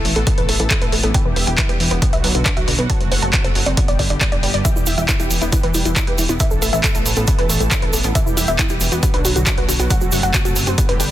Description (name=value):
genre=uplifting trance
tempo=137 BPM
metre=4/4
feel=straight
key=E minor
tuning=A4 = 440 Hz
part: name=analog string pad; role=sustained chords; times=0.0-11.1 s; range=C3 to A4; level=-27 LUFS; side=equal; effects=ensemble chorus, sidechain pumping
part: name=wide unison pluck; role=arpeggios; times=0.0-11.0 s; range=D3 to F#5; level=-27 LUFS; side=right 2 dB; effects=sidechain pumping, dub echo
part: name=plucky analog bass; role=bass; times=0.0-11.1 s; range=E1 to B1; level=-22 LUFS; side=equal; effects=sidechain pumping
part: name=punchy analog drum machine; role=drums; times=0.1-11.1 s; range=handclaps, hi-hat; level=-21 LUFS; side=equal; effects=none
part: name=wide unison pluck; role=melody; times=0.2-11.1 s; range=E4 to A5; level=-23 LUFS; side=equal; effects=sidechain pumping, dub echo
part: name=electronic kick drum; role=drums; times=0.3-10.9 s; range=none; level=-19 LUFS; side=equal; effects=none
part: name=egg shaker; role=percussion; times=4.7-11.1 s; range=none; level=-26 LUFS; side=right 4 dB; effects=none
room=little or no reverb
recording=dense, heavily limited modern master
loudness=-14 LUFS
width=side -13 dB against mid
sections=0.0-11.1 A section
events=none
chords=0.0 Asus2; 1.1 Em; 2.0 Bm; 2.9 F#dim; 3.8 G; 4.6 Em; 6.4 Asus2; 8.2 Em; 9.0 Bm; 9.9 F#dim